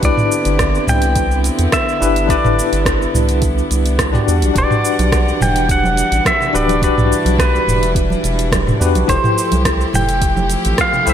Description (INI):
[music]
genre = sunset chillout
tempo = 106 BPM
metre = 4/4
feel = straight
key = E minor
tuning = A4 = 443 Hz
[part]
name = pedal steel guitar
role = melody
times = 0.0-11.1 s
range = B4 to G5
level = -19 LUFS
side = equal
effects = digital delay, shimmer reverb
[part]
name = barky tine electric piano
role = accompaniment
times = 0.0-11.1 s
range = D4 to D5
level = -20 LUFS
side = moving between left 6 dB and right 5 dB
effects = fast stereo tremolo, auto-pan, digital delay, shimmer reverb
[part]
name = rich chamber string section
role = sustained chords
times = 0.0-11.1 s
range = D3 to F#5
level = -23 LUFS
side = left 2 dB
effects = shimmer reverb
[part]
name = round analog bass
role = bass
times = 0.0-11.1 s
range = D1 to E2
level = -18 LUFS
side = equal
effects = none
[part]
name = electronic kick drum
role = drums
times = 0.0-10.9 s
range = none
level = -20 LUFS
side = equal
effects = overdrive
[part]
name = smooth R&B drum kit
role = drums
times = 0.0-11.1 s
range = hi-hat, rim click, shaker, toms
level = -20 LUFS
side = right 1 dB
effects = overdrive, gated reverb
[part]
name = congas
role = percussion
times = 5.0-11.0 s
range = none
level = -25 LUFS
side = right 4 dB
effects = none
[sound]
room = moderate plate reverb, RT60 1.6 s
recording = bright 1980s-style digital production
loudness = -12 LUFS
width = side -9 dB against mid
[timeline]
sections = 0.0-11.1 A section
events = none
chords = 0.0 Cmaj9; 4.3 Em9; 9.1 Fmaj9